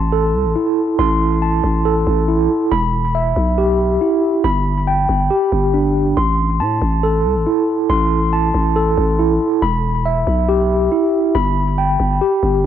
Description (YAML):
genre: hip hop, trap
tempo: 139 BPM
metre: 4/4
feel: half-time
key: A minor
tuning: A4 = 438 Hz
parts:
  - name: mellow tine electric piano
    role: arpeggios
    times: 0.0-12.7 s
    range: D4 to C6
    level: -16 LUFS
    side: right 1 dB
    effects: medium stereo tremolo, tape echo
  - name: growling 808-style bass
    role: bass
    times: 0.0-12.7 s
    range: E1 to A2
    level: -18 LUFS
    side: equal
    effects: none
room: digital ambience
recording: dry, gritty hardware recording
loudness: -14 LUFS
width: side -10 dB against mid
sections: 0.0-12.7 A section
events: none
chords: 0.0 Am; 2.7 Em; 4.4 G; 6.2 Am; 9.6 Em; 11.3 G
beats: 0.13 0.56 | 0.99 1.42 1.85 2.29 | 2.72 3.15 3.58 4.01 | 4.44 4.88 5.31 5.74 | 6.17 6.60 7.03 7.46 | 7.90 8.33 8.76 9.19 | 9.62 10.05 10.49 10.92 | 11.35 11.78 12.21 12.64